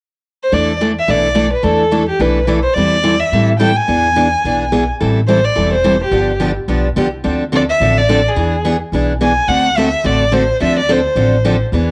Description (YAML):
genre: acoustic string swing (jazz manouche)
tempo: 214 BPM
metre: 4/4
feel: swing 59% on 8ths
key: unclear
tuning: A4 = 440 Hz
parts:
  - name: warm violin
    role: melody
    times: 0.4-11.6 s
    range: G4 to G#5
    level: -18 LUFS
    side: equal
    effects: none
  - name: picked steel-string acoustic guitar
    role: accompaniment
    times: 0.5-11.9 s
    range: D3 to A4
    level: -18 LUFS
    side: equal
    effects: cassette tape
  - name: upright bass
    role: bass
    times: 0.5-11.9 s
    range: E1 to A2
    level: -21 LUFS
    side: equal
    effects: none
room: light reverb, studio ambience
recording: home recording on cassette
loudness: -14 LUFS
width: mono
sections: 0.5-5.0 A section; 5.0-11.9 B section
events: none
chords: 0.0 N.C.; 0.5 E7sus4; 2.8 Am7/E; 3.9 E7; 5.0 Am7; 6.1 G7; 7.2 Dm7; 8.4 E7; 9.5 D7; 10.6 Dm7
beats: 0.24 | 0.52 0.80 1.08 1.36 | 1.64 1.92 2.20 2.48 | 2.76 3.04 3.32 3.60 | 3.88 4.16 4.44 4.72 | 5.00 5.28 5.56 5.84 | 6.12 6.40 6.68 6.96 | 7.24 7.52 7.80 8.08 | 8.36 8.64 8.92 9.20 | 9.48 9.76 10.04 10.32 | 10.60 10.88 11.16 11.44 | 11.72